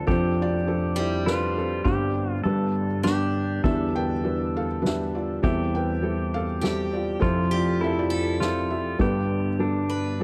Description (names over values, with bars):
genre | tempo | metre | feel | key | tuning
acoustic folk-pop ballad | 101 BPM | 3/4 | straight | unclear | A4 = 440 Hz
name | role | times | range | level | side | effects
felt-muted upright piano | melody | 0.0-10.2 s | F1 to G5 | -29 LUFS | equal | none
pedal steel guitar | second line | 0.0-10.2 s | D4 to A4 | -34 LUFS | equal | tape echo
sustaining fretless electric bass | bass | 0.0-10.2 s | E2 to G2 | -30 LUFS | equal | none
soft-mallet drum kit | drums | 0.1-10.2 s | kick drum, ride cymbal, snare drum | -32 LUFS | equal | none
picked steel-string acoustic guitar | arpeggios | 1.0-3.9, 6.6-10.2 s | G3 to B4 | -35 LUFS | equal | none
room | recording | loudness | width
studio reverb | dry, close 1970s-style studio recording | -25 LUFS | mono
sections
0.0-10.2 A section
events
none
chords
0.1 F6; 1.9 Gsus4; 2.5 G; 3.6 Em7; 5.4 Am7/E; 7.2 Fmaj7; 9.0 Gadd9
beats
| 0.08 0.67 1.26 | 1.86 2.45 3.05 | 3.65 4.24 4.84 | 5.43 6.03 6.63 | 7.22 7.81 8.40 | 9.00 9.60 10.20